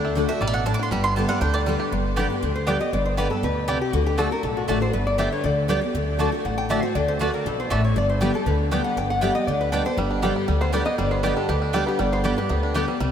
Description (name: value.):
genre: bluegrass.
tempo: 238 BPM.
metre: 4/4.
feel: straight.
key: G major.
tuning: A4 = 435 Hz.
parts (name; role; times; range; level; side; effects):
bluegrass banjo; melody; 0.0-1.9, 10.0-13.1 s; G3 to G4; -30 LUFS; right 4 dB; diffuse ambient delay.
picked steel-string acoustic guitar; accompaniment; 0.0-13.1 s; G2 to G4; -25 LUFS; left 2 dB; analog chorus.
mandolin; stabs; 0.0-12.8 s; A3 to D6; -28 LUFS; right 3 dB; none.
upright bass; bass; 0.0-13.1 s; G1 to D2; -26 LUFS; equal; none.
lap resonator guitar; melody; 2.6-13.0 s; F#4 to G5; -27 LUFS; left 2 dB; diffuse ambient delay.
room: moderate huge ambient reverb, RT60 6.0 s.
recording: dreamy mix soaked in reverb.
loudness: -20 LUFS.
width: side -8 dB against mid.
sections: 0.0-1.9 A section; 1.9-13.1 B section.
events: mandolin solo 0.0-1.9.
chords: 0.0 D; 0.9 G; 3.9 D; 4.9 G; 5.9 D; 8.0 G.